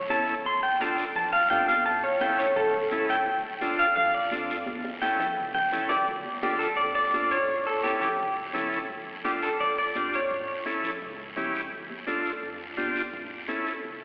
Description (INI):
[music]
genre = latin, cumbia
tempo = 170 BPM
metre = 4/4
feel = straight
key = D harmonic minor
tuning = A4 = 437 Hz
[part]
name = upright bass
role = bass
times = 0.0-14.0 s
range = A1 to F2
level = -48 LUFS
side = equal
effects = none
[part]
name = clean electric guitar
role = melody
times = 0.1-11.2 s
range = G4 to C6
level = -25 LUFS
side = equal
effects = spring reverb
[part]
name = combo organ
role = accompaniment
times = 0.1-13.7 s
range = C#4 to A4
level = -30 LUFS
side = equal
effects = none
[part]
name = congas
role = percussion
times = 0.1-14.0 s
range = none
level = -41 LUFS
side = equal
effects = none
[part]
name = guiro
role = percussion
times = 0.1-14.0 s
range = none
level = -41 LUFS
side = equal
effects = none
[sound]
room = wet church reverb, RT60 3.5 s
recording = recorded in a church or concert hall, telephone sound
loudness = -24 LUFS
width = side -28 dB against mid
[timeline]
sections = 0.0-6.1 A section; 6.1-14.0 B section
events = clean electric guitar solo 0.0-6.1; drum fill 4.7-6.1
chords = 0.5 Dm; 1.9 A; 3.3 Dm; 4.7 A7; 6.1 Dm; 7.5 A7; 8.9 Dm; 10.3 A7; 11.7 Dm; 13.1 A